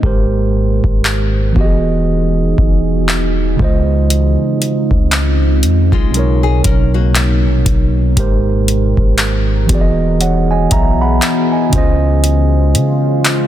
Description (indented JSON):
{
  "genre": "contemporary R&B",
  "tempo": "59 BPM",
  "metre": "4/4",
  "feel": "swing 58% on 16ths",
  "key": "unclear",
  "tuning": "A4 = 440 Hz",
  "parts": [
    { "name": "mellow tine electric piano", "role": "accompaniment", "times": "0.0-13.5 s", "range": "Ab2 to B5", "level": "-16 LUFS", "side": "right 3 dB", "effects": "none" },
    { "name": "deep dark ambient pad", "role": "sustained chords", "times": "0.0-13.5 s", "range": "B2 to C5", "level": "-20 LUFS", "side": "left 1 dB", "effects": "chorus, built-in reverb" },
    { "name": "long sustained 808-style bass", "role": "bass", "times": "0.0-13.5 s", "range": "E1 to Db3", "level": "-15 LUFS", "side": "equal", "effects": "none" },
    { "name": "booming analog drum machine", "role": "drums", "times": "0.0-13.5 s", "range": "handclaps, hi-hat, kick drum", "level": "-15 LUFS", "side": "equal", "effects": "none" },
    { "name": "nylon-string guitar", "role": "arpeggios", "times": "5.9-8.1 s", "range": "Ab3 to A#4", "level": "-22 LUFS", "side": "left 11 dB", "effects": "ping-pong delay" }
  ],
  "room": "digital ambience",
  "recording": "dense, heavily limited modern master",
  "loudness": "-11 LUFS",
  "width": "side -12 dB against mid",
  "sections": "0.0-13.5 A section",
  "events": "none",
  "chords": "0.0 Abmaj9; 1.6 Emaj9; 3.6 Dbmaj9; 6.1 Bmaj9; 8.2 Abmaj9; 9.7 Emaj9; 11.7 Dbmaj9"
}